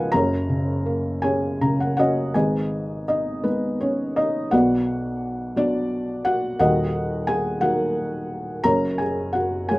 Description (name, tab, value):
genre	classical, lyrical solo piano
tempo	53-59 BPM (dotted quarters)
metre	6/8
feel	rubato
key	G# minor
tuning	A4 = 440 Hz
part	felt-muted upright piano	solo	0.0-9.8 s	D#1 to A#5	-20 LUFS	equal	none
room	light reverb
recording	close, detailed microphones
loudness	-20 LUFS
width	side -20 dB against mid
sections	0.0-2.3 A section; 2.3-9.8 B section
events	felt piano fill 1.2-2.3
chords	0.1 F#; 2.3 G#m; 4.5 Bm; 6.6 D#m; 8.6 F#add9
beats	| 0.13 1.22 | 2.34 3.44 | 4.52 5.57 | 6.59 7.62 | 8.65 9.70